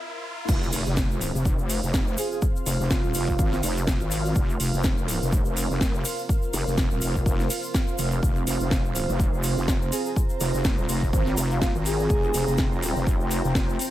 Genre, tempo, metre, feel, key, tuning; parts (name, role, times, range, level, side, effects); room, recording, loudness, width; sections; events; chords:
bass house; 124 BPM; 4/4; swing 56% on 16ths; F minor; A4 = 440 Hz
dark analog pad; sustained chords; 0.0-13.9 s; C4 to G5; -33 LUFS; right 2 dB; chorus, sidechain pumping
riser and impact; sound effects; 0.0-2.4 s; -35 LUFS; equal
wobble bass; bass; 0.5-13.8 s; Eb1 to Ab1; -26 LUFS; equal; chorus, sidechain pumping, high-pass filter
electronic kick drum; drums; 0.5-13.7 s; -24 LUFS; equal
house drum kit; drums; 0.5-13.9 s; crash cymbal, hi-hat, snare drum; -31 LUFS; right 1 dB
egg shaker; percussion; 0.5-13.9 s; -35 LUFS; left 4 dB
granular cloud pad; texture; 1.6-13.9 s; F4 to Bb5; -35 LUFS; right 1 dB; built-in reverb, analog chorus, sidechain pumping
breathy flute-like synth lead; melody; 2.2-3.6, 9.9-12.5 s; F4 to Ab4; -31 LUFS; right 1 dB; lush chorus, analog delay
little or no reverb; high-pass filter; -22 LUFS; side -14 dB against mid
0.5-13.9 A section
break 0.0-0.5; riser 0.0-0.5; drop 0.5-13.9; impact 0.5-2.4
0.5 F5